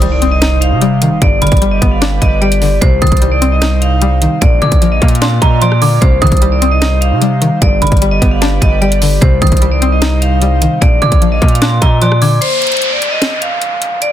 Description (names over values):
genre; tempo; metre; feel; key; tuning
hip hop, trap; 150 BPM; 4/4; half-time; C minor; A4 = 442 Hz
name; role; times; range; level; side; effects
vibraphone with hard mallets; melody; 0.0-14.1 s; C5 to F5; -17 LUFS; left 1 dB; low-pass filter, ping-pong delay
dark detuned synth bell; second line; 0.0-12.4 s; Bb5 to Eb6; -20 LUFS; right 3 dB; chorus, phaser, ping-pong delay
string-like resonator pluck; accompaniment; 0.0-12.4 s; G2 to Eb4; -17 LUFS; left 3 dB; chorus, low-pass filter
airy breathy pad; sustained chords; 0.0-12.4 s; C3 to F5; -21 LUFS; right 1 dB; chorus
distorted 808-style bass; bass; 0.0-12.4 s; G1 to C3; -13 LUFS; equal; distortion
trap drum kit; drums; 0.0-14.1 s; crash cymbal, hi-hat, kick drum, rim click, snare drum; -13 LUFS; equal; none
impact and downlifter; sound effects; 0.1-1.2, 12.4-14.1 s; none; -18 LUFS; right 1 dB; none
room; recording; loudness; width
little or no reverb; dense, heavily limited modern master; -9 LUFS; side -11 dB against mid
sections
0.0-12.4 A section; 12.4-14.1 B section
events
impact 0.0-1.2; break 12.4-14.1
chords
0.0 Cm; 1.2 G; 2.8 Cm; 4.4 Bb; 6.0 Cm; 7.6 G; 9.2 Cm; 10.8 Bb; 12.4 N.C.